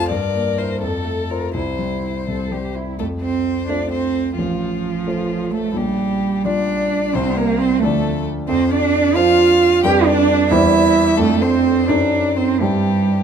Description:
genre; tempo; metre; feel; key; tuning
quick classical-period movement for piano trio; 81-90 BPM (dotted quarters); 6/8; rubato; F major, C major from 8.5 s; A4 = 440 Hz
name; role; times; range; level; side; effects
warm violin; melody; 0.0-13.2 s; F4 to G5; -24 LUFS; left 10 dB; none
warm cello; second line; 0.0-13.2 s; F3 to Bb4; -18 LUFS; right 6 dB; none
warm grand piano; accompaniment; 0.0-13.2 s; A1 to D5; -21 LUFS; left 2 dB; none
room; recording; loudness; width
wet recital hall reverb, RT60 1.4 s; close, detailed microphones; -15 LUFS; side -7 dB against mid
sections
0.0-3.0 A section; 3.0-13.2 B section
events
none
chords
0.1 C7/G; 0.8 F; 1.5 C; 3.0 F; 4.4 F/A; 5.7 Gm7/Bb; 7.1 C; 7.8 Dm; 8.5 Dm7/F; 9.8 G7/F; 10.5 C/E; 11.2 Dm/F; 11.9 F#dim7; 12.6 C/G

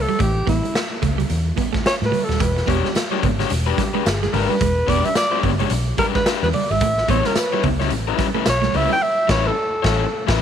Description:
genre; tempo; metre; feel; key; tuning
funk; 109 BPM; 4/4; swing 60% on 16ths; unclear; A4 = 435 Hz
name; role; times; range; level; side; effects
breathy alto saxophone; melody; 0.0-10.3 s; E4 to G5; -22 LUFS; equal; none
vintage muted fingered electric bass; bass; 0.0-10.4 s; D#1 to A2; -22 LUFS; equal; none
clean electric guitar; riff; 0.1-9.0 s; G3 to B3; -27 LUFS; right 13 dB; none
congas; percussion; 0.1-9.0 s; none; -30 LUFS; right 12 dB; none
raw garage drum kit; drums; 0.2-10.4 s; crash cymbal, hi-hat, kick drum, snare drum; -23 LUFS; equal; none
crunchy overdriven guitar; accompaniment; 2.7-10.4 s; G3 to C#5; -24 LUFS; left 13 dB; none
tambourine; percussion; 3.0-8.6 s; none; -38 LUFS; left 13 dB; none
room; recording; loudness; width
light reverb, studio ambience; 1960s-style stereo with parts hard left and right; -17 LUFS; side -8 dB against mid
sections
0.0-10.4 A section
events
break 0.0-2.4; alto saxophone solo 0.0-10.4; band accent 9.0-10.4; drum fill 10.1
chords
0.0 A7sus2; 2.4 E7#9; 6.8 A9

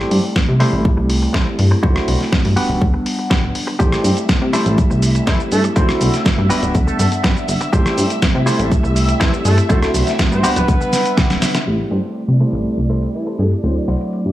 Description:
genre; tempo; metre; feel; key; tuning
filtered disco house; 122 BPM; 4/4; straight; A dorian; A4 = 441 Hz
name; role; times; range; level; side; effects
overdriven tine electric piano; accompaniment; 0.0-14.3 s; F#3 to F#5; -20 LUFS; equal; phaser, vintage 12-bit sampler grit, sidechain pumping, low-pass filter
direct-recorded clean electric guitar; riff; 0.0-14.2 s; E4 to C5; -26 LUFS; equal; sidechain pumping, low-pass filter
plucky analog bass; bass; 0.0-14.3 s; D1 to C3; -17 LUFS; equal; sidechain pumping, low-pass filter
dusty soul sampler-style drum kit; drums; 0.1-14.2 s; hi-hat, rim click, shaker, snare drum; -21 LUFS; equal; low-pass filter on snare, sidechain pumping on hats, low-pass filter on hats, sidechain pumping on perc, low-pass filter on perc
tambourine; percussion; 0.1-11.6 s; none; barely audible; none; none
electronic kick drum; drums; 0.4-11.3 s; none; -16 LUFS; equal; none
phased string machine; sustained chords; 4.0-14.3 s; D5 to E5; -28 LUFS; equal; ensemble chorus, phaser, sidechain pumping, low-pass filter
clear horn section; melody; 5.3-13.8 s; E3 to C5; -23 LUFS; right 1 dB; vintage 12-bit sampler grit, sidechain pumping, low-pass filter, diffuse ambient delay
room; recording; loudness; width
light reverb; small room ambience; -14 LUFS; side -14 dB against mid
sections
0.0-11.7 A section; 11.7-14.3 B section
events
filter sweep 0.0-11.7, 11.7-14.3; drum fill 10.9-11.7; filter sweep on drum 11.7-14.3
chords
0.0 Am7; 0.6 C6; 1.8 D9; 2.6 Gmaj7; 3.8 Am7; 4.5 C6; 5.8 D9; 6.5 Gmaj7; 7.7 Am7; 9.7 D9; 10.4 Gmaj7; 11.7 Am7; 13.6 D9

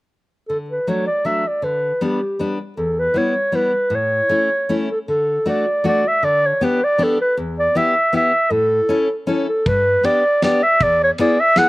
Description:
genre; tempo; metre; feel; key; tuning
alpine folk, alpine dance band; 157 BPM; 3/4; straight; D major; A4 = 440 Hz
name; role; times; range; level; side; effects
mellow clarinet; melody; 0.5-11.7 s; G4 to F#5; -16 LUFS; equal; none
fingerpicked steel-string acoustic guitar; accompaniment; 0.5-11.7 s; E2 to A4; -22 LUFS; left 2 dB; none
loose indie drum kit; drums; 9.7-11.7 s; kick drum, ride cymbal, snare drum; -25 LUFS; equal; none
room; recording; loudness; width
little or no reverb; recorded outdoors, with no room sound; -16 LUFS; side -19 dB against mid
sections
0.5-5.1 A section; 5.1-11.7 B section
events
none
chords
0.5 D; 1.6 G/D; 2.8 Em; 3.9 A; 5.1 D; 6.2 G/D; 7.4 Em; 8.5 A; 9.7 G; 10.8 E

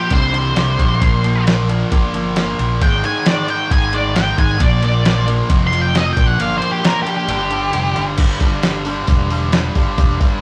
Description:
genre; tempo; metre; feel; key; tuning
classic rock; 134 BPM; 4/4; straight; unclear; A4 = 440 Hz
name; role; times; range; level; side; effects
octave-fuzz lead guitar; melody; 0.0-8.0 s; G4 to C6; -22 LUFS; equal; distortion
biting overdriven guitar; riff; 0.0-10.4 s; C2 to Bb3; -22 LUFS; equal; none
modern bright picked electric bass; bass; 0.1-10.4 s; E1 to C2; -22 LUFS; equal; none
lo-fi sampler-style drum kit; drums; 0.1-10.3 s; crash cymbal, hi-hat, kick drum, ride cymbal, snare drum; -20 LUFS; equal; none
room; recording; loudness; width
wet studio reverb, RT60 0.5 s; rough rehearsal-room recording, tube saturation; -16 LUFS; mono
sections
0.0-8.2 A section; 8.2-10.4 B section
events
lead electric guitar solo 0.0-8.2; kick and snare drop out 7.3-8.2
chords
0.1 C5; 1.0 Bb5; 2.8 Ab5; 4.6 Bb; 5.5 F5; 6.2 Bb5; 7.3 G5

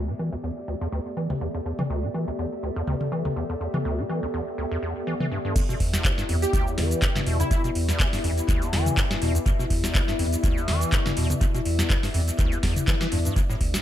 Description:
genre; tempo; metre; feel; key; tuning
acid house; 123 BPM; 4/4; swing 55% on 16ths; E minor; A4 = 440 Hz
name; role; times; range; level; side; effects
dark analog pad; sustained chords; 0.4-13.8 s; D4 to A4; -34 LUFS; left 4 dB; chorus, sidechain pumping
acid bass, square; riff; 0.0-13.8 s; D2 to E3; -29 LUFS; equal; overdrive, wide subtle chorus, analog delay
warbly tape-like pad; texture; 0.0-13.8 s; B3 to E5; -34 LUFS; equal; chorus, built-in reverb, sidechain pumping
booming analog drum machine; drums; 1.3-13.8 s; crash cymbal, handclaps, hi-hat, shaker, snare drum, toms; -29 LUFS; left 1 dB; dub echo
electronic kick drum; drums; 5.6-13.7 s; none; -24 LUFS; equal; none
warm sub bass; bass; 5.8-13.8 s; D2 to E2; -25 LUFS; equal; sidechain pumping
plucky unison lead; melody; 6.4-7.6 s; E4 to G4; -32 LUFS; right 2 dB; ensemble chorus, dub echo
room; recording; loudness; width
digital ambience; echo-heavy mix; -22 LUFS; side -12 dB against mid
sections
0.0-5.6 A section; 5.6-13.8 B section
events
filter sweep on acid bass 0.0-5.6; filter sweep on analog synth pad 0.0-5.6; drop 5.6-13.8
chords
0.0 Em7

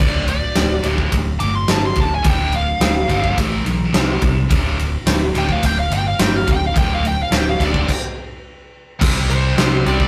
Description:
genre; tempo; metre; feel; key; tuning
hard rock; 107 BPM; 4/4; straight; D minor; A4 = 440 Hz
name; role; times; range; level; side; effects
smooth overdriven lead guitar; melody; 0.0-10.1 s; C5 to D6; -24 LUFS; equal; none
scooped high-gain guitar; riff; 0.0-10.1 s; D2 to C4; -26 LUFS; equal; distortion
picked electric bass; bass; 0.0-10.1 s; D1 to C2; -23 LUFS; equal; none
huge arena drum kit; drums; 0.0-10.1 s; crash cymbal, kick drum, ride cymbal, snare drum; -21 LUFS; equal; none
room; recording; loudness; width
light reverb; rough rehearsal-room recording, tube saturation; -17 LUFS; mono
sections
0.0-9.0 A section; 9.0-10.1 B section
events
lead electric guitar solo 0.0-9.0; stop 7.9-9.0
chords
0.0 Dm; 3.4 A5; 3.9 C5; 4.5 D5; 8.4 N.C.; 9.0 C5

